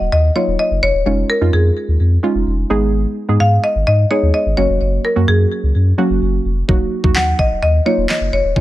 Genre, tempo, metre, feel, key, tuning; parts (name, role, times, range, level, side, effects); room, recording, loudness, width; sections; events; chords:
dance-pop; 128 BPM; 4/4; straight; Eb minor; A4 = 440 Hz
soft round pluck; accompaniment; 0.0-8.6 s; Gb3 to Ab4; -20 LUFS; right 2 dB; chorus, sidechain pumping
warm sub bass; bass; 0.0-8.6 s; Eb1 to Ab2; -15 LUFS; equal; sidechain pumping
marimba with medium hard mallets; melody; 0.1-8.6 s; Ab4 to Gb5; -17 LUFS; left 2 dB; digital delay
smooth R&B drum kit; drums; 6.7-8.6 s; handclaps, kick drum, snare drum; -16 LUFS; equal
little or no reverb; -13 LUFS; side -15 dB against mid
0.0-8.6 A section
0.0 Ebm; 1.1 Dbadd9/F; 2.7 Abm; 4.6 Gb; 6.7 Ebm